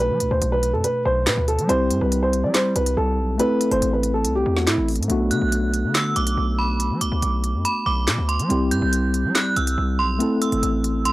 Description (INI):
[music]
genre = hip hop, drill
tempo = 141 BPM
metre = 4/4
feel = half-time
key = B phrygian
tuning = A4 = 438 Hz
[part]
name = dark baby grand piano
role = melody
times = 0.0-4.9 s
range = E4 to D5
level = -22 LUFS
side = right 1 dB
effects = none
[part]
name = tine electric piano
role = accompaniment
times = 0.0-11.1 s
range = B2 to A4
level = -24 LUFS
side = left 1 dB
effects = overdrive, medium stereo tremolo
[part]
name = distorted 808-style bass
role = bass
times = 0.0-11.1 s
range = G1 to G3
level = -24 LUFS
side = equal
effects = distortion
[part]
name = drill drum kit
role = drums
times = 0.2-11.1 s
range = handclaps, hi-hat, snare drum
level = -24 LUFS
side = equal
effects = none
[part]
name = metallic FM bell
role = second line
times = 5.3-11.1 s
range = B5 to G6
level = -25 LUFS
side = right 3 dB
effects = chorus, analog delay
[sound]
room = little or no reverb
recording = dry, gritty hardware recording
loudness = -18 LUFS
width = side -18 dB against mid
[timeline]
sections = 0.0-11.1 A section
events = none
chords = 0.0 Bm7; 1.7 C; 3.4 Am; 5.1 Bm7; 8.5 C; 10.2 Am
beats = 0.42 0.84 1.27 | 1.69 2.12 2.54 2.97 | 3.40 3.82 4.25 4.67 | 5.10 5.52 5.95 6.37 | 6.80 7.22 7.65 8.08 | 8.50 8.93 9.35 9.78 | 10.20 10.63 11.05